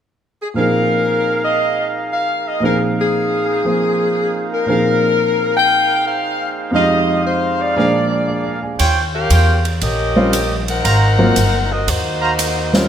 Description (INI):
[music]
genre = jazz, big band swing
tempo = 117 BPM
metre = 4/4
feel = swing 67% on 8ths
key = unclear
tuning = A4 = 440 Hz
[part]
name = clear saxophone section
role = melody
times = 0.4-12.9 s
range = Gb3 to G5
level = -17 LUFS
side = left 2 dB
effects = none
[part]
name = clear grand piano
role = accompaniment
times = 0.5-12.9 s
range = F2 to Ab5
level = -19 LUFS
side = right 1 dB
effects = none
[part]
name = clear trumpet section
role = stabs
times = 0.6-12.3 s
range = D4 to Bb5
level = -22 LUFS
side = right 2 dB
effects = none
[part]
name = upright bass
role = bass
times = 8.8-12.9 s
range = G1 to Fb2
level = -17 LUFS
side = equal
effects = none
[part]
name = swinging big-band drum kit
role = drums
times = 8.8-12.8 s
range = hi-hat, ride cymbal, snare drum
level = -23 LUFS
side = right 2 dB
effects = none
[sound]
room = moderate concert hall reverb, RT60 2.2 s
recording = none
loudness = -14 LUFS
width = side -9 dB against mid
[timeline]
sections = 0.6-8.8 A section; 8.8-12.9 B section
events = none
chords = 0.0 N.C.; 0.6 Bb7sus4; 6.7 Fm7; 7.8 Bb7; 8.8 Eb13; 10.8 Ab13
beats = 0.06 | 0.57 1.08 1.60 2.11 | 2.63 3.14 3.66 4.17 | 4.69 5.20 5.72 6.23 | 6.74 7.26 7.77 8.29 | 8.80 9.31 9.82 10.34 | 10.85 11.36 11.87 12.39